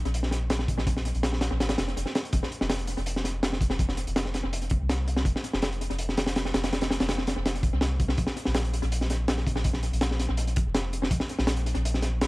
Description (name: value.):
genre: drum and bass, jungle.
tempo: 164 BPM.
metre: 4/4.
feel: straight.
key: unclear.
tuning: A4 = 440 Hz.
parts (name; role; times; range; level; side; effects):
soft dub sub bass; bass; 0.0-12.3 s; F1 to C2; -29 LUFS; equal; tube saturation.
crunchy breakbeat drum kit; drums; 0.1-12.3 s; hi-hat, kick drum, snare drum; -27 LUFS; equal; tape echo.
room: light reverb.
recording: echo-heavy mix, vinyl crackle.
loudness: -25 LUFS.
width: side -21 dB against mid.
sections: 0.0-12.3 A section.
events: none.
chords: none.